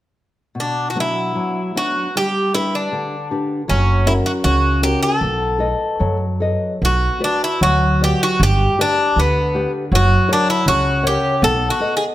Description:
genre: fado-style ballad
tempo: 72-81 BPM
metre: 2/4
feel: rubato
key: B minor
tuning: A4 = 440 Hz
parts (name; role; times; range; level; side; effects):
- nylon-string guitar; accompaniment; 0.5-12.1 s; B2 to F#5; -21 LUFS; left 2 dB; none
- Greek bouzouki; melody; 0.6-12.0 s; B3 to A4; -18 LUFS; equal; none
- upright bass; bass; 3.7-11.7 s; F#1 to F#2; -18 LUFS; right 1 dB; none
room: moderate recital hall reverb, RT60 1.6 s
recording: none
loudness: -15 LUFS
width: side -14 dB against mid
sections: 0.5-6.8 A section; 6.8-12.1 B section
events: none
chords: 0.5 Bm; 2.1 G; 3.7 F#; 5.2 B7; 6.8 Bm; 8.4 G; 9.9 F#; 11.4 B7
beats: | 0.55 1.36 | 2.15 2.92 | 3.68 4.43 | 5.20 5.99 | 6.80 7.60 | 8.39 9.16 | 9.91 10.65 | 11.41

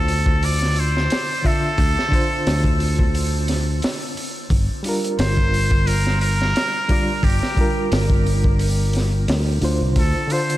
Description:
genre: trip hop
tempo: 88 BPM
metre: 4/4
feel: swing 54% on 16ths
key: D minor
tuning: A4 = 440 Hz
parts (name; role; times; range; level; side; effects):
- trumpet with straight mute; melody; 0.0-10.6 s; G4 to D5; -24 LUFS; equal; dub echo
- reed electric piano; accompaniment; 0.0-10.6 s; D3 to E5; -25 LUFS; right 1 dB; fast tremolo, harmonic tremolo, tape echo
- fingered electric bass; bass; 0.0-10.1 s; G1 to D2; -20 LUFS; equal; none
- crunchy breakbeat drum kit; drums; 0.1-10.6 s; hi-hat, kick drum, snare drum; -21 LUFS; equal; none
room: light reverb, small room ambience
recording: none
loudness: -17 LUFS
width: side -15 dB against mid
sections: 0.0-10.6 A section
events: none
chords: 0.0 Dm7; 4.5 Gm7; 10.0 Dm7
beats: 0.42 1.10 | 1.78 2.46 3.15 3.83 | 4.51 5.19 5.87 6.56 | 7.24 7.92 8.60 9.28 | 9.96

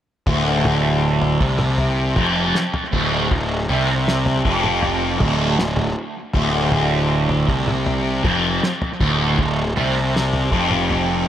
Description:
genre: psychedelic rock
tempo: 79 BPM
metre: 4/4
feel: straight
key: D minor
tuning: A4 = 441 Hz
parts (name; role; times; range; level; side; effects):
- thick fuzz guitar; riff; 0.3-11.3 s; D2 to C3; -18 LUFS; equal; distortion, phaser, tape echo
- fuzz picked electric bass; bass; 0.3-11.2 s; D1 to C2; -22 LUFS; equal; overdrive
- cloth-damped thuddy drum kit; drums; 0.3-11.1 s; kick drum, snare drum, toms; -23 LUFS; equal; tape echo
room: little or no reverb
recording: echo-heavy mix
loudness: -16 LUFS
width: side -10 dB against mid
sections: 0.3-11.3 A section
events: none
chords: 0.3 Dm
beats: | 0.27 1.02 1.78 2.54 | 3.30 4.06 4.82 5.58 | 6.34 7.10 7.86 8.62 | 9.38 10.14 10.90

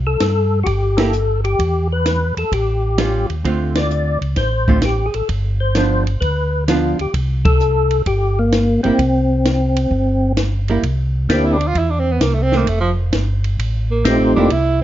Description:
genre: soul jazz organ trio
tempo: 130 BPM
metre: 4/4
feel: swing 68% on 8ths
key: C mixolydian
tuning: A4 = 439 Hz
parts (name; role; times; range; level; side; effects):
- mellow tonewheel organ; bass; 0.0-14.8 s; F1 to G2; -18 LUFS; equal; chorus vibrato, slow rotary speaker
- percussive tonewheel organ; melody; 0.1-14.5 s; A3 to D5; -18 LUFS; left 2 dB; slow rotary speaker, chorus vibrato
- compact cocktail drum kit; drums; 0.2-14.6 s; hi-hat, kick drum, ride cymbal, snare drum; -20 LUFS; equal; none
- archtop guitar, miked and amplified; accompaniment; 1.0-14.5 s; D3 to G4; -20 LUFS; right 4 dB; none
- clear tenor saxophone; melody; 11.3-14.8 s; F3 to F4; -19 LUFS; right 3 dB; none
room: light reverb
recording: dark, warm production, nothing above 7.5 kHz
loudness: -15 LUFS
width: side -12 dB against mid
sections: 0.0-10.8 A section; 10.8-14.8 B section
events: band accent 0.9, 3.7, 7.4; tenor saxophone solo 10.8-14.8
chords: 0.0 C5; 1.6 E5; 2.5 Aaug7; 3.4 Dm7; 5.3 G7; 7.1 C7(no3); 10.8 C7; 12.7 F7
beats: 0.20 0.67 1.13 | 1.59 2.06 2.52 2.98 | 3.44 3.91 4.37 4.83 | 5.29 5.75 6.22 6.68 | 7.14 7.60 8.06 8.52 | 8.98 9.44 9.90 10.37 | 10.82 11.29 11.74 12.21 | 12.66 13.12 13.58 14.04 | 14.50

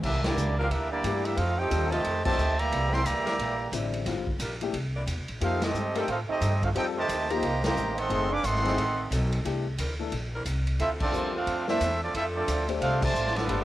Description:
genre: jazz, big band swing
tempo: 178 BPM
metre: 4/4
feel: swing 62% on 8ths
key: unclear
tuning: A4 = 442 Hz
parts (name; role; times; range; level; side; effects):
- clear trumpet section; melody; 0.0-13.6 s; Bb3 to D6; -29 LUFS; right 1 dB; none
- bright trombone section; second line; 0.0-13.6 s; C3 to G4; -32 LUFS; right 5 dB; cassette tape
- upright bass; bass; 0.0-13.6 s; F#1 to A2; -30 LUFS; equal; none
- swinging big-band drum kit; drums; 0.0-13.6 s; crash cymbal, hi-hat, kick drum, ride cymbal, snare drum; -34 LUFS; equal; cassette tape
- clear saxophone section; sustained chords; 0.6-13.6 s; E3 to D5; -37 LUFS; equal; cassette tape
- warm upright piano; accompaniment; 1.0-13.6 s; D3 to D5; -33 LUFS; left 6 dB; cassette tape
room: light reverb, small room ambience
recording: home recording on cassette, lossy compression artefacts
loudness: -25 LUFS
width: side -15 dB against mid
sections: 0.0-13.6 A section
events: band accent 0.2, 2.2, 5.6, 7.6, 11.0, 13.0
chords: 0.0 C9; 1.4 F9; 2.7 C9; 4.1 Gm7; 4.7 C9; 5.4 F9; 8.1 F#dim7; 9.4 C9; 10.8 Dm7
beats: | 0.03 0.37 0.71 1.04 | 1.38 1.72 2.05 2.39 | 2.72 3.06 3.40 3.73 | 4.07 4.40 4.74 5.08 | 5.41 5.75 6.08 6.42 | 6.76 7.09 7.43 7.76 | 8.10 8.44 8.77 9.11 | 9.45 9.78 10.12 10.46 | 10.79 11.13 11.47 11.80 | 12.14 12.48 12.81 13.15 | 13.49

